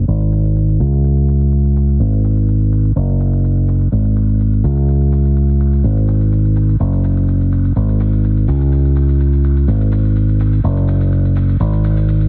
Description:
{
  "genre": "piano house",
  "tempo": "125 BPM",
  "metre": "4/4",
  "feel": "straight",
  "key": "unclear",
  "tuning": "A4 = 440 Hz",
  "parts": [
    { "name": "fingered electric bass", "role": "bass", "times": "0.0-12.3 s", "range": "F#1 to C#2", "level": "-11 LUFS", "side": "equal", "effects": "low-pass filter" },
    { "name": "shaker", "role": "drums", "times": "0.1-12.3 s", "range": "none", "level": "-43 LUFS", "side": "left 3 dB", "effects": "none" }
  ],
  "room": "little or no reverb",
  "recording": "heavily compressed radio sound, multiband compression, low-pass filter",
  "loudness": "-11 LUFS",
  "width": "side -38 dB against mid",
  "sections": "0.0-12.3 A section",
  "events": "filter sweep 0.0-12.3",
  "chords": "none"
}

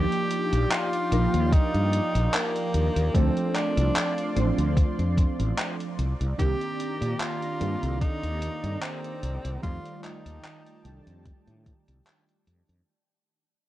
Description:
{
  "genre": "vaporwave",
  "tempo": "74 BPM",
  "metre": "4/4",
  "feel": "swing 54% on 16ths",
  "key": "unclear",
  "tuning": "A4 = 440 Hz",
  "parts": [
    { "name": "breathy tenor saxophone", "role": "melody", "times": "0.0-11.2 s", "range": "Bb3 to G4", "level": "-30 LUFS", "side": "equal", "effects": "analog delay" },
    { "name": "warbly lo-fi synth keys", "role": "accompaniment", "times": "0.0-12.9 s", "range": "Eb3 to D5", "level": "-30 LUFS", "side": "right 2 dB", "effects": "analog chorus, analog delay" },
    { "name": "lush unison pad", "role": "sustained chords", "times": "0.0-12.8 s", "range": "Eb3 to C6", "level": "-39 LUFS", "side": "right 1 dB", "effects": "chorus, vintage 12-bit sampler grit" },
    { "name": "mellow fretless electric bass", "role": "bass", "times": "0.0-12.8 s", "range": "A1 to Bb2", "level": "-26 LUFS", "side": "equal", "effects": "tube saturation" },
    { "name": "gated 80s digital drum machine", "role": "drums", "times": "0.1-12.8 s", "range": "handclaps, hi-hat", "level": "-32 LUFS", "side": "equal", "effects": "gated reverb, vintage 12-bit sampler grit" },
    { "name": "electronic kick drum", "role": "drums", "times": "1.5-11.8 s", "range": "none", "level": "-23 LUFS", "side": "equal", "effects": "vintage 12-bit sampler grit" }
  ],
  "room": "digital ambience",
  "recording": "cassette tape",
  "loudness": "-23 LUFS",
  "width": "side -14 dB against mid",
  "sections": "0.0-12.9 A section",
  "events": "fade-out 4.2-12.9",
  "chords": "0.0 Ebmaj9; 3.1 Dm7; 6.0 Cm9; 9.6 F13"
}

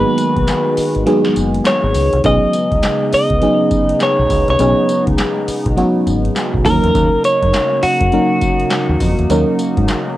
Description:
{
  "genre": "R&B, new jack swing",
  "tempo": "102 BPM",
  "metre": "4/4",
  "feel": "swing 61% on 16ths",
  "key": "unclear",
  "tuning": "A4 = 435 Hz",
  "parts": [
    { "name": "clean electric guitar", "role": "melody", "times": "0.0-10.2 s", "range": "F#4 to D#5", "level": "-16 LUFS", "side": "equal", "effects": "none" },
    { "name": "mellow FM electric piano", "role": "accompaniment", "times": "0.0-10.2 s", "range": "E3 to A#4", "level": "-17 LUFS", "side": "right 1 dB", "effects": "chorus, phaser, cassette tape" },
    { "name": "chorused pulse-width pad", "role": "sustained chords", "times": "0.0-10.2 s", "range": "C#3 to F#4", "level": "-22 LUFS", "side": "equal", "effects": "cassette tape" },
    { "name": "deep dub fingered electric bass", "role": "bass", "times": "0.0-9.9 s", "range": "F#1 to G#2", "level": "-18 LUFS", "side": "equal", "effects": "none" },
    { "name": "booming analog drum machine", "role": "drums", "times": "0.2-10.1 s", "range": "handclaps, hi-hat, kick drum, snare drum, tambourine", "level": "-21 LUFS", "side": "equal", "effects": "cassette tape" }
  ],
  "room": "light reverb",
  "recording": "home recording on cassette",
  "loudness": "-12 LUFS",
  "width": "side -15 dB against mid",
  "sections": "0.0-10.2 A section",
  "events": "kick muted 1.1-2.2",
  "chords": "0.0 G#m7; 2.2 B69; 6.7 D#m7"
}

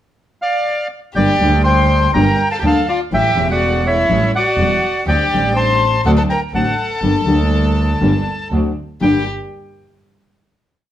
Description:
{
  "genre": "tango",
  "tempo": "122 BPM",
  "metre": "4/4",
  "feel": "rubato",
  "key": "G minor",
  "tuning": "A4 = 445 Hz",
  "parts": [
    { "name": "bandoneon", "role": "melody", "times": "0.4-9.2 s", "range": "C#5 to C6", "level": "-17 LUFS", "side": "equal", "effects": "slapback echo" },
    { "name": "rich studio string section", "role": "stabs", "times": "1.1-9.2 s", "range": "C#3 to D4", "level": "-26 LUFS", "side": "right 1 dB", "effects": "none" },
    { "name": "warm violin", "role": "second line", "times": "1.2-9.2 s", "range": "E4 to C5", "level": "-22 LUFS", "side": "left 2 dB", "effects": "none" },
    { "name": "nylon-string guitar", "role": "accompaniment", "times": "1.2-9.2 s", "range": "G2 to G4", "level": "-18 LUFS", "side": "left 2 dB", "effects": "none" },
    { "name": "bright double bass", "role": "bass", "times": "1.2-9.2 s", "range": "E1 to D2", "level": "-18 LUFS", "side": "right 1 dB", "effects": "none" }
  ],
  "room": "moderate studio ambience, RT60 0.5 s",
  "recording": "heard from further back in the room",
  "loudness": "-13 LUFS",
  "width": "side -11 dB against mid",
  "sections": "0.0-1.2 pickup bar; 1.2-9.0 A section; 9.0-10.9 final chord",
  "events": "none",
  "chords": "0.0 N.C.; 1.2 Gm; 3.1 A7; 5.1 D7sus4; 6.0 D7; 7.0 Gm; 8.5 D7; 9.0 Gm"
}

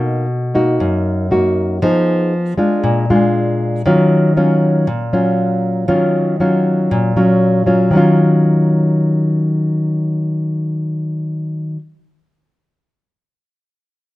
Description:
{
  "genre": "bossa nova",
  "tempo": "118 BPM",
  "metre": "4/4",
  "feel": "straight",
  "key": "Eb minor",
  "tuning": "A4 = 442 Hz",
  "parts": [
    { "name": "nylon-string guitar", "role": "solo", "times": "0.0-11.8 s", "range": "F#2 to Ab4", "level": "-13 LUFS", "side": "equal", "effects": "none" }
  ],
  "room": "light reverb",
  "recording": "close, detailed microphones",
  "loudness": "-13 LUFS",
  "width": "side -17 dB against mid",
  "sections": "0.0-7.9 A section; 7.9-12.0 B section",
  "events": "none",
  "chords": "0.0 Bmaj7; 1.8 Fm7b5; 2.8 Bb7; 3.9 Ebm9"
}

